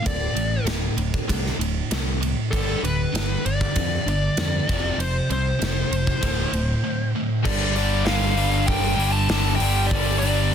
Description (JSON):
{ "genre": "hard rock", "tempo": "98 BPM", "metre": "4/4", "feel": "straight", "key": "D dorian", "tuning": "A4 = 440 Hz", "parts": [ { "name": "dark smooth lead guitar", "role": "melody", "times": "0.0-10.5 s", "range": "A4 to A5", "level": "-27 LUFS", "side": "left 3 dB", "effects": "overdrive" }, { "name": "high-gain distorted guitar", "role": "riff", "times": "0.0-10.5 s", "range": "D2 to G3", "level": "-26 LUFS", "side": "right 1 dB", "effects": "distortion" }, { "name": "modern bright picked electric bass", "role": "bass", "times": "0.1-10.5 s", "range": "D1 to F2", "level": "-25 LUFS", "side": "equal", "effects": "none" }, { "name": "gated 80s drum kit", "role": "drums", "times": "0.1-10.4 s", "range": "crash cymbal, hi-hat, kick drum, ride cymbal, snare drum", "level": "-26 LUFS", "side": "equal", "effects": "none" }, { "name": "scooped high-gain guitar", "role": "riff", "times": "7.4-10.5 s", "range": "G2 to G3", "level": "-27 LUFS", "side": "equal", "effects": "distortion" } ], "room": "small room ambience", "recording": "dense, heavily limited modern master", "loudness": "-20 LUFS", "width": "side -8 dB against mid", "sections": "0.0-7.4 A section; 7.4-10.5 B section", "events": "none", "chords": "0.0 D5; 2.5 G; 4.7 F5; 6.2 D5; 7.4 G5", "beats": "| 0.06 0.68 1.29 1.91 | 2.53 3.14 3.76 4.37 | 4.99 5.60 6.22 6.83 | 7.45 8.06 8.68 9.29 | 9.90 10.52" }